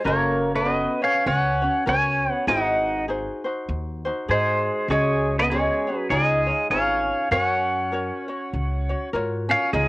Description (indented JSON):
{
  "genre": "Hawaiian",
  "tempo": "99 BPM",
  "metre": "4/4",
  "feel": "swing 60% on 8ths",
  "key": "F# major",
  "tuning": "A4 = 441 Hz",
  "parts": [
    { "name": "pedal steel guitar", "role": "melody", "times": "0.0-9.9 s", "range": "G#4 to G#5", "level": "-22 LUFS", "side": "equal", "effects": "cassette tape" },
    { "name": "ukulele", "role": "accompaniment", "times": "0.0-9.9 s", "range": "C#4 to C#5", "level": "-29 LUFS", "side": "left 2 dB", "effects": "cassette tape" },
    { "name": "picked swing-style acoustic guitar", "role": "second line", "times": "0.1-9.9 s", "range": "G#3 to D#4", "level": "-27 LUFS", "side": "right 1 dB", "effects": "cassette tape" },
    { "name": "upright bass", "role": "bass", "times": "0.1-9.9 s", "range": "F#1 to G#2", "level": "-28 LUFS", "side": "equal", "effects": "none" }
  ],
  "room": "small room ambience",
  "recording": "home recording on cassette",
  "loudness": "-20 LUFS",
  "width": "side -21 dB against mid",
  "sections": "0.0-9.7 A section",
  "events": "none",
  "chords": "0.0 F#; 2.5 G#7; 4.9 C#sus4; 6.1 C#add9; 7.3 F#maj7"
}